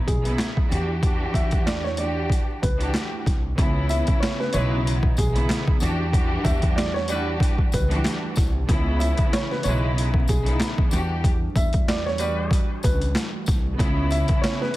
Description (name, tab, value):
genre	hip hop, boom-bap hip-hop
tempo	94 BPM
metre	4/4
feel	swing 57% on 16ths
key	unclear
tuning	A4 = 442 Hz
part	dark upright piano	melody	0.0-14.7 s	G#4 to E5	-30 LUFS	right 1 dB	high-pass filter, low-pass filter, digital delay
part	warm studio string section	accompaniment	0.0-14.8 s	C#3 to G4	-28 LUFS	equal	cassette tape, high-pass filter, low-pass filter
part	upright bass	bass	0.1-14.2 s	B1 to E2	-25 LUFS	equal	none
part	boom bap sampler-style drum kit	drums	0.1-14.8 s	hi-hat, kick drum, snare drum	-22 LUFS	equal	overdrive
part	dark analog pad	sustained chords	4.1-14.8 s	C#3 to F#5	-34 LUFS	equal	chorus, phaser, high-pass filter, low-pass filter
part	tambourine	percussion	3.9-14.3 s	none	-40 LUFS	left 5 dB	none
part	warm horn section	stabs	4.5-12.6 s	G3 to B4	-35 LUFS	left 2 dB	high-pass filter, low-pass filter, digital delay
room	small room reverb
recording	dense, heavily limited modern master, vinyl crackle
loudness	-20 LUFS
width	side -17 dB against mid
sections	0.0-3.6 A section; 3.6-14.8 B section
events	none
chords	0.0 C#m9; 0.7 Em9; 3.6 C#m9; 5.8 Em9; 8.7 C#m9; 10.9 Em9; 13.8 C#m7